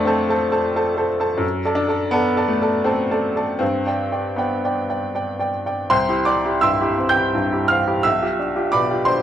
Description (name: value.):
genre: classical, romantic character piece for solo piano.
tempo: 82 BPM.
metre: 3/4.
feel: uneven beats, rubato.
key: C major.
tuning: A4 = 440 Hz.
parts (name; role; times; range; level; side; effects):
clear upright piano; solo; 0.0-9.2 s; B1 to G6; -17 LUFS; equal; none.
room: light reverb.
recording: close, detailed microphones.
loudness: -18 LUFS.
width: side -10 dB against mid.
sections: 0.0-5.9 A section; 5.9-9.2 B section.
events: none.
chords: 0.0 F; 1.4 D7/F#; 3.6 G; 5.9 C; 8.1 G7/B.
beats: 0.07 0.74 | 1.43 2.14 2.85 | 3.61 4.38 5.13 | 5.89 6.62 7.34 | 8.05 8.74.